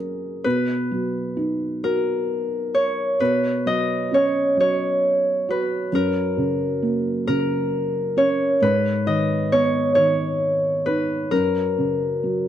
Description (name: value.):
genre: children's music, lullaby.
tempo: 44 BPM (dotted quarters).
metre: 6/8.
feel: rubato.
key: B major.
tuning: A4 = 441 Hz.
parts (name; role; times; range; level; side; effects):
Celtic harp; melody; 0.0-12.5 s; G#4 to D#5; -21 LUFS; equal; slapback echo.
felt-muted upright piano; accompaniment; 0.0-12.5 s; F#2 to F#4; -24 LUFS; right 1 dB; none.
room: little or no reverb.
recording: dry, close 1970s-style studio recording.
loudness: -19 LUFS.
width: side -10 dB against mid.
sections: 0.0-3.2 A section; 3.2-12.5 A section.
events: none.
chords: 0.5 B; 3.2 Bsus2; 5.9 F#; 8.6 G#m; 11.3 F#.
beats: | 0.45 1.82 | 3.20 4.57 | 5.93 7.27 | 8.61 9.96 | 11.31.